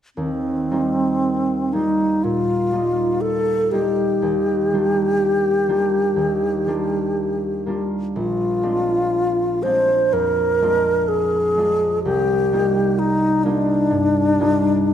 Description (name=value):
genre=classical, impressionist duo for alto flute and harp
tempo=61 BPM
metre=4/4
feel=uneven beats, rubato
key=Eb major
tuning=A4 = 443 Hz
part: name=bright wooden-headed alto flute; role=melody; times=0.2-14.9 s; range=C4 to C5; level=-18 LUFS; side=left 1 dB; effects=none
part: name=concert harp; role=accompaniment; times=0.2-14.9 s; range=Bb1 to F4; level=-23 LUFS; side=right 1 dB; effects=none
room=moderate concert hall reverb, RT60 2.0 s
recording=none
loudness=-17 LUFS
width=side -10 dB against mid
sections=0.2-14.9 A section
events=none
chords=0.2 Eb69; 4.2 Gm7/Eb; 8.2 Bb9; 12.0 Cm11